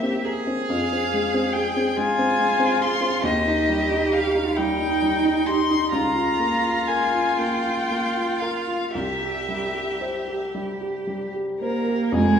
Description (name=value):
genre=classical, slow romantic movement for piano trio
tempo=36-48 BPM (dotted quarters)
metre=6/8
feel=rubato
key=unclear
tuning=A4 = 440 Hz
part: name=rich violin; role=melody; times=0.0-12.4 s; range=Ab4 to C6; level=-25 LUFS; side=left 3 dB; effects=none
part: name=clear cello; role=second line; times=0.0-12.4 s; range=Ab3 to Ab4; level=-25 LUFS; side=right 3 dB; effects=none
part: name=warm baby grand piano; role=accompaniment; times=0.0-12.4 s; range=F1 to C5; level=-25 LUFS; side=equal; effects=none
room=wet recital hall reverb, RT60 1.6 s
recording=heard from further back in the room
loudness=-20 LUFS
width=side -7 dB against mid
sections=0.0-12.1 A section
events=none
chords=0.0 C7/E; 0.7 Fm; 3.2 Eb; 5.9 Bbm/Db; 8.9 C